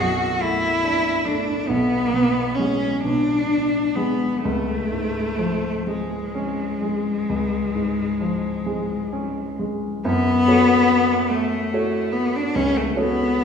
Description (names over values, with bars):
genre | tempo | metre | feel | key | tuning
classical, romantic duo for cello and grand piano | 41-50 BPM (dotted quarters) | 12/8 | rubato | F# minor | A4 = 440 Hz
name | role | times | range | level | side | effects
rich cello | melody | 0.0-13.4 s | G#3 to F#4 | -20 LUFS | left 2 dB | none
warm baby grand piano | accompaniment | 0.0-13.4 s | B1 to C#5 | -24 LUFS | right 2 dB | none
room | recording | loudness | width
wet recital hall reverb, RT60 1.8 s | heard from further back in the room, small room ambience | -19 LUFS | side -7 dB against mid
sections
0.0-10.0 A section; 10.0-13.4 B section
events
none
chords
0.0 Bm7; 1.7 G#dim/B; 4.4 C#; 10.0 F#m